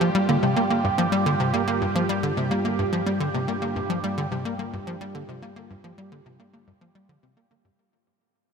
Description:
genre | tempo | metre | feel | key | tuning
ambient, sequencer-driven space music | 108 BPM | 4/4 | straight | G minor | A4 = 440 Hz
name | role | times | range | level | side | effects
phased analog pad | sustained chords | 0.0-7.8 s | G3 to G4 | -28 LUFS | right 4 dB | phaser, chorus, shimmer reverb
tight sequencer bass | riff | 0.0-7.7 s | G2 to Bb3 | -25 LUFS | equal | analog chorus, ping-pong delay, shimmer reverb
analog drone | bass | 0.1-7.8 s | G2 | -35 LUFS | equal | chorus
warbly dusty pluck | arpeggios | 0.1-7.6 s | D3 to C4 | -31 LUFS | moving between left 8 dB and left 1 dB | chorus, auto-pan, ping-pong delay, shimmer reverb
room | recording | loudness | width
moderate huge ambient reverb, RT60 9.0 s | none | -22 LUFS | side -6 dB against mid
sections
0.0-7.8 A section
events
fade-out 0.0-7.8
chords
0.0 Gm7

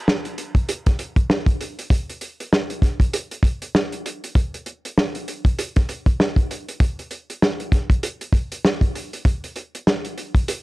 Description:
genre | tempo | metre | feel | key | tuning
hip hop | 98 BPM | 4/4 | swing 59% on 16ths | none | none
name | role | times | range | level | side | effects
warm soul drum kit | drums | 0.1-10.6 s | hi-hat, kick drum, snare drum | -19 LUFS | equal | none
room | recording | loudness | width
little or no reverb | dark, warm production | -19 LUFS | side -20 dB against mid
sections
0.0-10.6 A section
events
none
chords
none

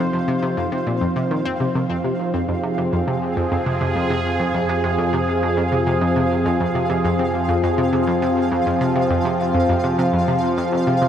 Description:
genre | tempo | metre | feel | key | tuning
ambient, sequencer-driven space music | 102 BPM | 4/4 | straight | F minor | A4 = 440 Hz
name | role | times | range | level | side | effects
sweeping resonant pad | sustained chords | 0.0-11.1 s | F3 to C5 | -20 LUFS | equal | chorus
analog pluck | riff | 0.0-11.1 s | F2 to C4 | -23 LUFS | equal | chorus, tape echo
pulsing gated texture | texture | 0.0-11.1 s | F5 | -30 LUFS | right 2 dB | chorus, built-in reverb
analog drone | bass | 3.2-11.1 s | F2 | -29 LUFS | equal | chorus, tube saturation
room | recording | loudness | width
wet huge ambient reverb, RT60 7.4 s | dreamy mix soaked in reverb | -18 LUFS | side -9 dB against mid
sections
0.0-1.8 A section; 1.8-11.1 B section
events
none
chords
0.0 F7(no3); 1.8 Fm

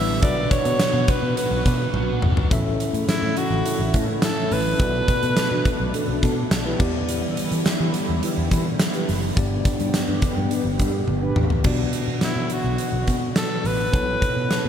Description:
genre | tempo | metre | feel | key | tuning
1980s-style pop | 105 BPM | 4/4 | straight | B minor | A4 = 440 Hz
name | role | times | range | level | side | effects
breathy alto saxophone | melody | 0.0-6.2, 12.2-14.7 s | E4 to E5 | -25 LUFS | right 1 dB | ping-pong delay
bell-like tine electric piano | accompaniment | 0.0-14.7 s | G2 to E5 | -28 LUFS | left 2 dB | medium stereo tremolo
overdriven electric guitar | accompaniment | 0.0-2.5 s | B2 to E4 | -35 LUFS | right 1 dB | ensemble chorus
phased analog pad | sustained chords | 0.0-14.7 s | B2 to A4 | -30 LUFS | equal | phaser, chorus
vintage muted picked electric bass | bass | 0.0-14.7 s | F#1 to E3 | -26 LUFS | equal | none
huge arena drum kit | drums | 0.2-14.6 s | crash cymbal, hi-hat, kick drum, snare drum, tambourine, toms | -23 LUFS | equal | gated reverb
mellow synth brass | stabs | 3.2-11.5 s | C#4 to B4 | -31 LUFS | right 1 dB | chorus, ping-pong delay
room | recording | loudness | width
moderate lush hall reverb, RT60 2.5 s | bright 1980s-style digital production | -19 LUFS | side -9 dB against mid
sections
0.0-2.5 A section; 2.5-11.7 B section; 11.7-14.7 C section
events
drum fill 1.9-2.5, 11.1-11.7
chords
0.2 Bm; 2.5 A; 4.8 Bm7; 6.8 Em7; 9.4 G; 11.7 Bm; 13.9 Aadd9/B

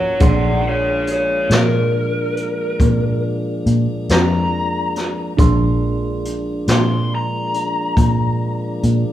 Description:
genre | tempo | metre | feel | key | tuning
slow blues | 46 BPM (dotted quarters) | 12/8 | straight | unclear | A4 = 440 Hz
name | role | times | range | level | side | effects
lead guitar through a small cranked amp | melody | 0.0-8.8 s | Ab4 to C6 | -21 LUFS | left 1 dB | overdrive, digital delay
tine electric piano | accompaniment | 0.0-9.1 s | D4 to C6 | -26 LUFS | right 5 dB | overdrive
mellow tonewheel organ | sustained chords | 0.0-9.1 s | Eb3 to D4 | -26 LUFS | left 1 dB | slow rotary speaker
vintage muted fingered electric bass | bass | 0.0-9.0 s | Bb1 to Bb2 | -19 LUFS | equal | none
jazz brush drum kit | drums | 0.2-9.0 s | hi-hat, kick drum, snare drum | -18 LUFS | equal | none
room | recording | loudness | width
moderate large studio reverb, RT60 0.9 s | band playing live in one room | -15 LUFS | side -12 dB against mid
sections
0.0-9.1 A section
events
none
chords
0.2 Bb7

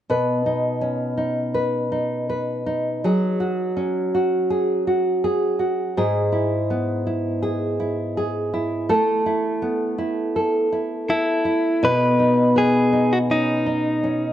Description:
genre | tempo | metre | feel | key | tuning
pop | 82 BPM | 4/4 | straight | B mixolydian | A4 = 440 Hz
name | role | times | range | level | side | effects
nylon-string guitar | accompaniment | 0.1-14.3 s | G#2 to B4 | -20 LUFS | equal | none
direct-recorded clean electric guitar | melody | 11.1-14.3 s | D#4 to B4 | -20 LUFS | equal | none
room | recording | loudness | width
wet plate reverb, RT60 3.6 s | worn, warbling old tape, cassette tape, warbly pitch drift | -19 LUFS | side -11 dB against mid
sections
0.1-11.8 A section; 11.8-14.3 B section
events
none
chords
0.1 Badd9; 3.0 F#sus2; 6.0 E/G#; 8.9 Asus2; 11.8 Badd9

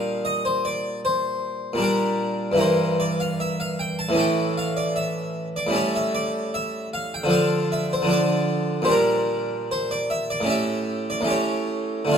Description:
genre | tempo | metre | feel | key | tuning
classical, baroque-style suite movement for harpsichord | 76 BPM | 4/4 | rubato | unclear | A4 = 440 Hz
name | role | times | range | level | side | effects
harpsichord | solo | 0.0-12.2 s | G2 to A5 | -21 LUFS | equal | none
room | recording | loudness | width
moderate concert hall reverb, RT60 2.1 s | close, detailed microphones | -21 LUFS | side -7 dB against mid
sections
0.0-12.2 A section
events
none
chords
0.0 Gm/Bb; 2.6 Edim/G; 4.2 A; 7.3 Dm; 8.9 Gm/Bb; 10.5 A7

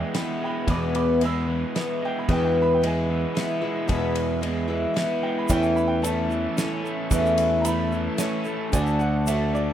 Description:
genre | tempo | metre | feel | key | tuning
folk rock and heartland rock | 112 BPM | 3/4 | straight | E mixolydian | A4 = 439 Hz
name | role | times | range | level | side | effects
warm grand piano | melody | 0.0-9.7 s | D5 to E6 | -32 LUFS | right 4 dB | none
picked twelve-string acoustic guitar | accompaniment | 0.0-9.7 s | E2 to F#4 | -25 LUFS | left 2 dB | none
bright tonewheel organ | sustained chords | 0.0-9.7 s | G#3 to A4 | -40 LUFS | right 3 dB | none
crunchy overdriven guitar | riff | 0.0-9.7 s | E2 to C#4 | -29 LUFS | right 2 dB | none
picked electric bass | bass | 0.0-9.7 s | D2 to E2 | -26 LUFS | right 1 dB | none
damped 70s drum kit | drums | 0.1-9.4 s | kick drum, ride cymbal, snare drum | -29 LUFS | right 1 dB | none
dark upright piano | accompaniment | 5.5-9.7 s | E4 to D5 | -34 LUFS | right 7 dB | none
egg shaker | percussion | 5.5-9.6 s | none | -37 LUFS | right 6 dB | none
room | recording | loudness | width
moderate small room ambience, RT60 0.5 s | rough home demo mix | -21 LUFS | side -10 dB against mid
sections
0.0-9.7 A section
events
grand piano solo 0.0-9.7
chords
0.0 E; 5.5 A/E; 8.7 D

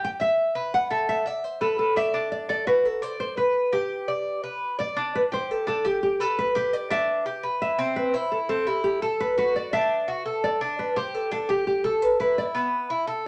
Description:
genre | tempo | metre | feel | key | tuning
latin | 170 BPM | 4/4 | straight | unclear | A4 = 440 Hz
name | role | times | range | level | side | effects
nylon-string guitar | melody | 0.0-12.9 s | G4 to G5 | -27 LUFS | equal | none
Cuban tres | arpeggios | 0.0-13.3 s | B3 to E5 | -30 LUFS | equal | none
room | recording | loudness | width
wet studio reverb, RT60 0.6 s | none | -25 LUFS | mono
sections
0.0-5.0 A section; 5.0-13.3 B section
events
none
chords
0.0 Em; 0.7 Asus2; 2.1 D; 3.5 G; 5.0 Dsus4; 7.8 C6; 9.2 D; 10.6 Dsus4; 12.0 Asus2

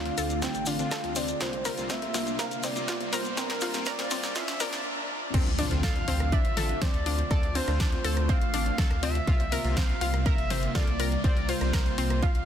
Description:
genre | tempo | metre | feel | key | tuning
progressive house | 122 BPM | 4/4 | straight | D minor | A4 = 440 Hz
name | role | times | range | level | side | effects
expressive portamento lead | melody | 0.0-12.5 s | Bb4 to G5 | -34 LUFS | equal | chorus, sidechain pumping, ping-pong delay
evolving wavetable pad | sustained chords | 0.0-12.5 s | C3 to F4 | -36 LUFS | right 1 dB | phaser, built-in reverb, sidechain pumping
supersaw stab | stabs | 0.0-12.3 s | C3 to A4 | -36 LUFS | left 2 dB | cassette tape, sidechain pumping, tape echo
round analog bass | bass | 0.0-12.5 s | G1 to D2 | -31 LUFS | equal | tube saturation, sidechain pumping
riser and impact | sound effects | 0.2-7.3 s | none | -38 LUFS | equal | none
house drum kit | drums | 0.1-12.4 s | crash cymbal, hi-hat, rim click, snare drum | -34 LUFS | left 1 dB | high-pass filter on snare, small room ambience, high-pass filter on hats, high-pass filter on cymbals
analog pluck | arpeggios | 0.2-12.3 s | C4 to Bb4 | -35 LUFS | left 1 dB | chorus, sidechain pumping, tape echo
maracas | percussion | 0.2-4.8 s | none | -39 LUFS | left 1 dB | none
electronic kick drum | drums | 0.4-12.3 s | none | -26 LUFS | equal | high-pass filter on kick, small room ambience
soft synth bell | second line | 5.8-12.5 s | C5 to F5 | -41 LUFS | equal | none
room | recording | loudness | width
light reverb, digital ambience | dense, heavily limited modern master, high-pass filter | -25 LUFS | side -9 dB against mid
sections
0.0-5.3 A section; 5.3-12.5 B section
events
build-up 0.0-5.3; drum fill 0.0-4.8; filter sweep on synth pluck 0.0-5.3; filter sweep on analog synth lead 0.0-5.3; filter sweep 0.0-5.3; riser 0.2-4.8; stop 4.8-5.3; drop 5.3-12.5; impact 5.3-7.3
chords
0.0 Dm7; 1.4 C7sus4; 5.3 Dm7; 9.3 C7sus4

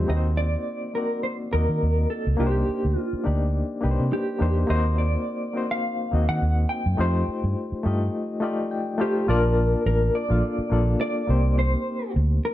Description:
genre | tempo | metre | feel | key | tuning
lush 1970s-style soul | 105 BPM | 4/4 | swing 54% on 16ths | unclear | A4 = 440 Hz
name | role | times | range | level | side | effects
mellow electric guitar | melody | 0.0-12.5 s | G4 to G5 | -28 LUFS | equal | tremolo, plate reverb
reed electric piano | accompaniment | 0.0-12.5 s | G3 to A5 | -27 LUFS | left 2 dB | overdrive, fast tremolo
vintage muted fingered electric bass | bass | 0.0-12.4 s | A1 to Eb3 | -22 LUFS | equal | none
room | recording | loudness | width
light reverb | dark, warm production | -21 LUFS | side -14 dB against mid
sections
0.1-9.3 A section; 9.3-12.5 B section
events
reed electric piano fill 8.1-9.3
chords
0.1 Ebm6; 2.4 Cm9; 4.7 Ebm6; 7.0 F9; 9.3 Bbmaj7; 11.3 Cm7

